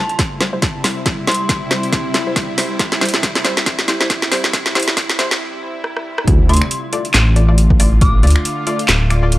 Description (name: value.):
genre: deep dubstep.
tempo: 138 BPM.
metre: 4/4.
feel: swing 57% on 16ths, half-time.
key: D minor.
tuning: A4 = 441 Hz.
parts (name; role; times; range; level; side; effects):
dark detuned synth bell; melody; 0.0-1.9, 6.5-8.6 s; A5 to D6; -26 LUFS; equal; chorus, dub echo.
bowed-like drone; sustained chords; 0.0-9.4 s; C3 to F4; -24 LUFS; equal; built-in reverb.
filtered dub chord stab; stabs; 0.0-9.3 s; G3 to D5; -24 LUFS; left 1 dB; chorus, dub echo.
garage drum kit; drums; 0.1-9.4 s; finger snaps, handclaps, hi-hat, rim click, snare drum; -17 LUFS; equal; overdrive.
electronic kick drum; drums; 0.2-8.1 s; none; -17 LUFS; equal; overdrive.
dark detuned saw bass; bass; 6.3-9.4 s; D1 to D2; -12 LUFS; equal; transformer saturation.
room: light reverb.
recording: dry, gritty hardware recording, high-pass filter.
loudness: -13 LUFS.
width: side -17 dB against mid.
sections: 0.0-6.3 A section; 6.3-9.4 B section.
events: build-up 0.0-6.3; drum fill 0.0-5.4, 5.8-6.3; filter sweep on synth stab 0.0-6.3; filter sweep on synth bell 0.0-6.3; break 5.4-6.3; drop 6.3-9.4.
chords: 0.0 C; 6.3 Dm.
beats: 0.19 0.62 | 1.06 1.49 1.93 2.36 | 2.80 3.23 3.67 4.10 | 4.54 4.97 5.41 5.84 | 6.28 6.71 7.14 7.58 | 8.01 8.45 8.88 9.32.